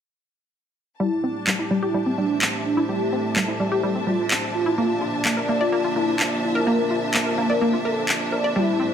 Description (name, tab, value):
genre	melodic techno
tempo	127 BPM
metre	4/4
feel	straight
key	A phrygian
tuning	A4 = 440 Hz
part	expressive portamento lead	melody	1.0-8.9 s	D4 to D5	-26 LUFS	equal	analog chorus, dub echo
part	dark analog pad	sustained chords	1.0-8.9 s	A3 to D5	-28 LUFS	right 2 dB	chorus
part	analog pluck	arpeggios	1.0-8.9 s	G3 to D5	-24 LUFS	equal	chorus, dub echo
part	warm studio string section	texture	1.0-8.9 s	D4 to A5	-28 LUFS	left 1 dB	none
part	electronic handclaps	drums	1.5-8.2 s	none	-23 LUFS	equal	overdrive
room	moderate recital hall reverb, RT60 1.3 s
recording	none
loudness	-20 LUFS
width	side -8 dB against mid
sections	1.0-8.9 A section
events	filter sweep on synth pluck 1.0-8.9; filter sweep on analog synth lead 1.0-8.9; filter sweep on analog synth pad 1.0-8.9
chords	1.0 Am7; 4.8 Bb